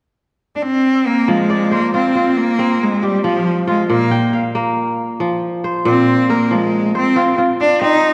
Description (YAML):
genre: west african traditional, West African string and xylophone music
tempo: 92 BPM (dotted quarters)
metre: 12/8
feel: straight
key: F dorian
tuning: A4 = 440 Hz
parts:
  - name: bright cello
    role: melody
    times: 0.6-8.1 s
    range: F3 to Eb4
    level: -18 LUFS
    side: equal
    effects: none
  - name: kora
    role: arpeggios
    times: 1.3-8.1 s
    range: Bb2 to G5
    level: -19 LUFS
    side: equal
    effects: none
room: wet concert hall reverb, RT60 2.1 s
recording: recorded in a church or concert hall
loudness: -16 LUFS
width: mono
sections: 0.0-1.3 A section; 1.3-8.1 B section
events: none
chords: 0.0 N.C.; 1.3 Fm; 3.9 Bb5; 6.5 Fm